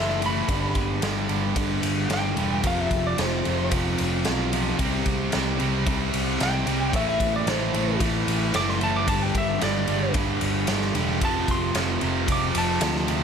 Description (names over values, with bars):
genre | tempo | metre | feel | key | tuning
hard rock | 112 BPM | 4/4 | straight | unclear | A4 = 442 Hz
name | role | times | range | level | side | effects
lightly driven lead guitar | melody | 0.0-13.2 s | C5 to D6 | -28 LUFS | equal | plate reverb, tape echo
overdriven semi-hollow guitar | riff | 0.0-13.2 s | F2 to C4 | -28 LUFS | right 12 dB | none
sludgy distorted guitar | riff | 0.0-13.2 s | F2 to C4 | -29 LUFS | left 13 dB | overdrive
picked electric bass | bass | 0.0-13.2 s | E1 to D2 | -28 LUFS | equal | none
raw garage drum kit | drums | 0.1-13.2 s | kick drum, ride cymbal, snare drum | -27 LUFS | equal | none
room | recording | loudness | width
moderate studio reverb, RT60 0.5 s | none | -21 LUFS | side -7 dB against mid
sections
0.0-13.2 A section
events
lead electric guitar solo 0.0-13.2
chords
0.0 Am; 0.5 G; 2.6 F5; 4.8 C5; 6.9 Am; 9.1 G5; 11.2 F